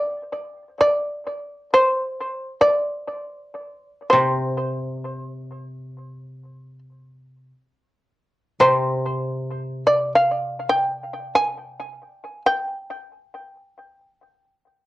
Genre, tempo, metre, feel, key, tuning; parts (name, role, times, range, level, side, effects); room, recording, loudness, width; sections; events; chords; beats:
japanese traditional; free time; A4 = 440 Hz
shamisen; melody; 0.0-14.9 s; C5 to Ab5; -20 LUFS; equal; cassette tape, analog delay
koto; accompaniment; 4.1-12.0 s; C3; -26 LUFS; left 1 dB; cassette tape
moderate small room reverb, RT60 0.6 s; home recording on cassette; -19 LUFS; side -17 dB against mid
0.0-14.9 A section
free time